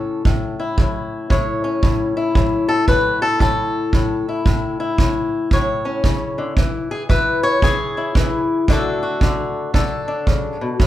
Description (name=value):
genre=acoustic country blues, solo or duo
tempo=114 BPM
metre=4/4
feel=swing 64% on 8ths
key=A major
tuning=A4 = 440 Hz
part: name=fingerpicked swing-style acoustic guitar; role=melody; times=0.0-10.9 s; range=A2 to C#5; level=-19 LUFS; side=left 2 dB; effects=none
part: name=kick drum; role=drums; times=0.3-10.9 s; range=none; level=-18 LUFS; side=right 1 dB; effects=none
room=moderate large studio reverb, RT60 0.8 s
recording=band playing live in one room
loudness=-16 LUFS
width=side -13 dB against mid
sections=0.0-10.9 A section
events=none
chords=0.0 A; 6.6 N.C.; 8.7 D